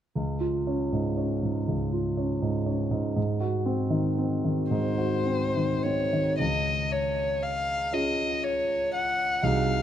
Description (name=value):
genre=classical, slow romantic movement for piano trio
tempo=40 BPM (dotted quarters)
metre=6/8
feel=rubato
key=Db major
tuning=A4 = 440 Hz
part: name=warm grand piano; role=accompaniment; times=0.2-9.8 s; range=C2 to Ab4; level=-26 LUFS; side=right 1 dB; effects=none
part: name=warm violin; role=melody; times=4.7-9.8 s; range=C5 to Gb5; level=-27 LUFS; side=left 2 dB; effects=none
room=moderate concert hall reverb, RT60 2.3 s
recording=close, detailed microphones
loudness=-25 LUFS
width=side -10 dB against mid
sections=0.2-6.4 A section; 6.4-9.8 B section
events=none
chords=0.2 Db; 3.2 Ab7; 6.4 Db